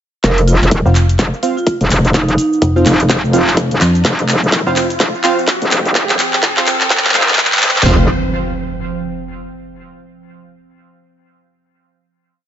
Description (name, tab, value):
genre	bass house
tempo	126 BPM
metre	4/4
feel	swing 60% on 16ths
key	unclear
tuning	A4 = 439 Hz
part	vibraphone with medium hard mallets	melody	0.2-3.1 s	Eb4 to Bb4	-19 LUFS	right 2 dB	dub echo
part	dark analog pad	sustained chords	2.5-8.1 s	F3 to G5	-26 LUFS	right 3 dB	chorus, phaser, sidechain pumping
part	metallic wobble bass	bass	0.2-8.1 s	Eb1 to F1	-14 LUFS	equal	chorus, tube saturation, sidechain pumping
part	big-room dance drum kit	drums	0.2-8.0 s	kick drum, snare drum, toms	-16 LUFS	equal	high-pass filter on kick, studio reverb, high-pass filter on snare, high-pass filter on toms
part	big-room dance drum kit	drums	0.2-7.9 s	handclaps, hi-hat, shaker	-16 LUFS	equal	studio reverb
part	riser and impact	sound effects	1.5-9.8 s	none	-23 LUFS	equal	none
part	band-passed chord stab	stabs	0.9-8.0 s	C4 to F5	-19 LUFS	right 2 dB	chorus, sidechain pumping, dub echo
part	metallic FM bass	bass	0.9-7.6 s	F1 to F2	-13 LUFS	equal	sidechain pumping
room	light reverb, digital ambience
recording	high-pass filter, nothing above 7.8 kHz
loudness	-11 LUFS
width	side -10 dB against mid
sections	0.2-7.9 build; 7.9-9.8 final chord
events	build-up 0.2-7.9; drum fill 0.2-7.9; filter sweep on synth stab 0.2-7.9; filter sweep on analog synth pad 0.2-7.9; filter sweep 0.2-7.9; riser 1.5-7.9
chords	0.2 F5